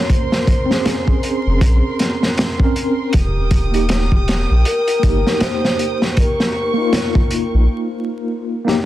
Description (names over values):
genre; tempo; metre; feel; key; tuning
trip hop; 79 BPM; 4/4; swing 59% on 16ths; unclear; A4 = 439 Hz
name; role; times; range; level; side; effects
pure breathy sine lead; melody; 0.0-7.7 s; G4 to Db5; -23 LUFS; left 1 dB; lush chorus, tape echo
mellow tine electric piano; accompaniment; 0.0-8.9 s; Bb3 to Bb4; -22 LUFS; equal; medium stereo tremolo, tape echo
warm studio violin section; sustained chords; 0.0-7.7 s; Bb4 to Eb6; -27 LUFS; right 2 dB; none
crunchy breakbeat drum kit; drums; 0.1-8.8 s; hi-hat, kick drum, snare drum; -17 LUFS; equal; soft clipping on snare
soft dub sub bass; bass; 1.5-7.7 s; Eb1 to Bb1; -16 LUFS; equal; none
room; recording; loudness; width
studio reverb; dense, heavily limited modern master, vinyl crackle; -14 LUFS; side -14 dB against mid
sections
0.0-8.9 A section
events
break 7.7-8.9; drum fill 8.6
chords
0.0 Bbmadd9; 3.1 Eb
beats
| 0.09 0.85 1.61 2.37 | 3.13 3.89 4.65 5.41 | 6.17 6.93 7.69 8.45